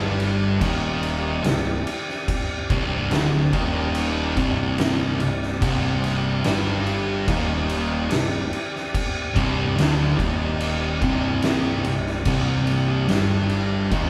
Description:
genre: stoner and doom metal.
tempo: 72 BPM.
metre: 4/4.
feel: straight.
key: C minor.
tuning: A4 = 440 Hz.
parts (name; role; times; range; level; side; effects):
tonewheel organ; sustained chords; 0.0-14.1 s; C4 to D5; -35 LUFS; equal; slow rotary speaker.
thick fuzz guitar; riff; 0.0-14.1 s; C2 to G3; -29 LUFS; equal; distortion.
thick fuzz guitar; riff; 0.0-14.1 s; C2 to G3; -27 LUFS; equal; distortion.
fuzz picked electric bass; bass; 0.0-14.1 s; C1 to G1; -30 LUFS; equal; overdrive, tube saturation.
oversized low-tuned drum kit; drums; 0.2-14.1 s; crash cymbal, kick drum, snare drum; -28 LUFS; equal; none.
room: moderate studio reverb, RT60 0.5 s.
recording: band playing live in one room.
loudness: -22 LUFS.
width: mono.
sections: 0.0-14.1 A section.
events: none.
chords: 0.0 Cm.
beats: 0.62 1.45 | 2.29 3.12 3.95 4.79 | 5.62 6.45 7.28 8.12 | 8.95 9.78 10.61 11.44 | 12.26 13.09 13.92.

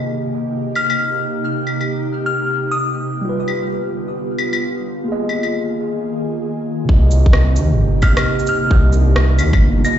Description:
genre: future garage.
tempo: 132 BPM.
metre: 4/4.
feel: swing 63% on 16ths.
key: C minor.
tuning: A4 = 440 Hz.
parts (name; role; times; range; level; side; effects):
mellow tine electric piano; accompaniment; 0.0-10.0 s; C3 to Eb5; -23 LUFS; right 2 dB; medium stereo tremolo, vintage 12-bit sampler grit, sidechain pumping, tape echo.
ethereal airy pad; sustained chords; 0.0-10.0 s; C3 to Ab4; -23 LUFS; equal; ensemble chorus, built-in reverb, sidechain pumping.
glassy synth bell; melody; 0.8-3.2, 8.0-10.0 s; Eb6 to Bb6; -22 LUFS; left 2 dB; chorus, tape echo.
electronic claves, shaker and rim click; drums; 0.8-10.0 s; none; -23 LUFS; left 2 dB; none.
dark detuned saw bass; bass; 6.9-9.8 s; G1 to Eb2; -14 LUFS; equal; tube saturation, sidechain pumping.
electronic kick drum; drums; 6.9-9.6 s; none; -12 LUFS; equal; none.
room: moderate digital room reverb, RT60 1.1 s.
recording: played on a big sound system in a bare room, large studio reverb, nothing above 7.8 kHz.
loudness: -15 LUFS.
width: side -10 dB against mid.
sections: 0.0-6.9 A section; 6.9-10.0 B section.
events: none.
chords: 0.0 Cm7; 3.3 G7; 5.1 Bb7sus4; 6.9 Cm7.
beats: 0.08 0.53 0.98 | 1.44 1.89 2.35 2.80 | 3.26 3.71 4.17 4.62 | 5.08 5.53 5.99 6.44 | 6.89 7.35 7.80 8.26 | 8.71 9.17 9.62.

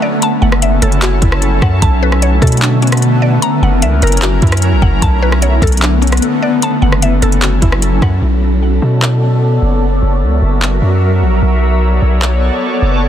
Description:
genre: hip hop, atmospheric cloud-rap.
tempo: 150 BPM.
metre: 4/4.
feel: half-time.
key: B minor.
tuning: A4 = 440 Hz.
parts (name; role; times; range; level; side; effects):
mallet-like synth pluck; arpeggios; 0.0-8.2 s; C#4 to A#5; -20 LUFS; left 2 dB; chorus, tape echo.
smooth R&B drum kit; drums; 0.2-12.3 s; handclaps, hi-hat, kick drum, rim click; -18 LUFS; equal; none.
long sustained 808-style bass; bass; 0.4-13.1 s; F#1 to B2; -12 LUFS; equal; none.
room: little or no reverb.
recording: dense, heavily limited modern master.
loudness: -10 LUFS.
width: side -10 dB against mid.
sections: 0.0-8.2 A section; 8.2-13.1 B section.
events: none.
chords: 0.2 F#m7; 1.8 Bm9; 3.4 F#7; 5.0 Bm9; 6.6 F#m7; 8.2 Bm9; 9.8 F#7; 11.4 Bm9.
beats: | 0.22 0.62 1.02 1.42 | 1.82 2.22 2.62 3.02 | 3.42 3.82 4.22 4.62 | 5.02 5.42 5.82 6.22 | 6.62 7.02 7.42 7.82 | 8.22 8.62 9.02 9.42 | 9.82 10.22 10.62 11.02 | 11.42 11.82 12.22 12.62 | 13.02.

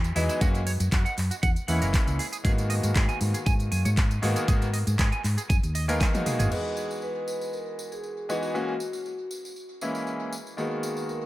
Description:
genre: nu-disco, nu disco.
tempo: 118 BPM.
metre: 4/4.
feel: straight.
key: G# minor.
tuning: A4 = 440 Hz.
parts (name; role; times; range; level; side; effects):
bright concert grand piano; accompaniment; 0.0-11.3 s; D#3 to A#4; -31 LUFS; left 1 dB; sidechain pumping, tape echo.
hollow-body short-scale fingered electric bass; bass; 0.0-6.5 s; F#1 to G#2; -26 LUFS; equal; sidechain pumping.
pop drum kit; drums; 0.0-6.6 s; crash cymbal, handclaps, hi-hat, tambourine, toms; -33 LUFS; equal; small room reverb.
clean electric guitar; riff; 0.2-6.5 s; E4 to G#5; -34 LUFS; right 3 dB; analog chorus, tape echo.
tambourine; percussion; 0.2-11.2 s; none; -42 LUFS; equal; tape echo.
electronic kick drum; drums; 0.4-6.1 s; none; -24 LUFS; equal; small room reverb.
vibraphone with medium mallets; melody; 6.5-11.3 s; F#4 to B4; -34 LUFS; equal; tape echo.
room: light reverb.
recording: echo-heavy mix.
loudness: -24 LUFS.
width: side -16 dB against mid.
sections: 0.0-6.5 A section; 6.5-11.3 B section.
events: drum fill 6.0-6.5.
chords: 0.4 F#7; 2.2 G#m7; 6.5 Emaj7; 8.5 F#7; 10.3 G#m7.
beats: | 0.41 0.92 1.43 1.94 | 2.45 2.96 3.46 3.97 | 4.48 4.99 5.50 6.01 | 6.52 7.02 7.53 8.04 | 8.55 9.06 9.57 10.07 | 10.58 11.09.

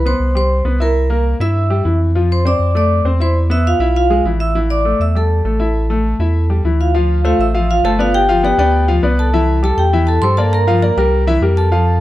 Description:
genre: latin, salsa.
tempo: 200 BPM.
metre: 4/4.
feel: straight.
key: unclear.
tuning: A4 = 439 Hz.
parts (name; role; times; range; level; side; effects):
vibraphone with medium hard mallets; melody; 0.0-12.0 s; F4 to E6; -18 LUFS; equal; none.
pure sine sub bass; bass; 0.0-12.0 s; G1 to G2; -15 LUFS; equal; none.
clear grand piano; accompaniment; 0.1-12.0 s; E3 to F5; -18 LUFS; left 3 dB; none.
room: small room ambience.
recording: dry, close 1970s-style studio recording.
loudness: -12 LUFS.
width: side -15 dB against mid.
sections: 0.0-6.9 A section; 6.9-12.0 B section.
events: none.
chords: 0.0 Cmaj7; 1.0 C7; 2.2 F6; 3.4 E; 4.6 A5; 6.9 Dm11; 8.1 G7; 9.3 C6; 10.5 Gm7; 11.1 C7.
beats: 0.05 0.35 0.65 | 0.95 1.25 1.55 1.85 | 2.15 2.45 2.75 3.05 | 3.35 3.65 3.95 4.25 | 4.55 4.85 5.15 5.45 | 5.75 6.05 6.35 6.65 | 6.95 7.25 7.54 7.84 | 8.14 8.44 8.74 9.04 | 9.33 9.63 9.93 10.23 | 10.52 10.82 11.12 11.42 | 11.71.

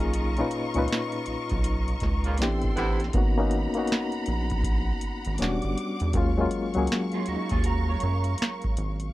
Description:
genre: R&B, neo-soul.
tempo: 80 BPM.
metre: 4/4.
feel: swing 63% on 16ths.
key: unclear.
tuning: A4 = 441 Hz.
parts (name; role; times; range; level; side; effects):
reed electric piano; accompaniment; 0.0-9.1 s; A#2 to B4; -29 LUFS; left 3 dB; fast tremolo.
warm studio string section; sustained chords; 0.0-9.1 s; F#3 to D6; -35 LUFS; left 1 dB; none.
rubbery square bass; bass; 0.0-9.1 s; E1 to F#2; -27 LUFS; equal; none.
booming analog drum machine; drums; 0.0-9.1 s; handclaps, hi-hat, kick drum, snare drum; -29 LUFS; right 1 dB; none.
clear horn section; stabs; 2.3-3.0 s; C3 to E#4; -30 LUFS; right 3 dB; none.
electric guitar through a small old amp; second line; 7.1-9.0 s; C#4 to C#5; -33 LUFS; right 11 dB; ensemble chorus.
room: little or no reverb.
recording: none.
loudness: -24 LUFS.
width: side -16 dB against mid.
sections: 0.0-9.1 A section.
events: band accent 0.1-3.1.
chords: 0.0 Bmaj9#11; 2.4 Am9; 3.1 G#m9; 5.4 Em9; 6.1 D#m9.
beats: | 0.14 0.89 1.64 2.39 | 3.14 3.89 4.64 5.39 | 6.14 6.89 7.64 8.39.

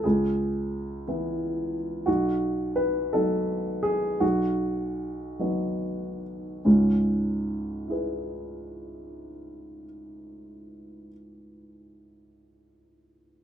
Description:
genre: neoclassical minimalist piano.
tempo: 47-60 BPM (dotted quarters).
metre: 6/8.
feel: rubato.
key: C# minor.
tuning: A4 = 440 Hz.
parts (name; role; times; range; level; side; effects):
dark upright piano; solo; 0.0-13.4 s; B1 to B4; -25 LUFS; equal; none.
room: moderate small room ambience, RT60 0.5 s.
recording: minimal, uncompressed stereo recording.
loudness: -24 LUFS.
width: side -10 dB against mid.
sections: 0.0-6.6 A section; 6.6-11.6 B section.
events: slowing down 1.1-6.6.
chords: 0.0 C#m7; 2.1 B; 6.6 C#m7.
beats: | 0.03 1.05 | 2.07 3.13 | 4.22 5.39 | 6.64 7.89 | 9.14 10.38.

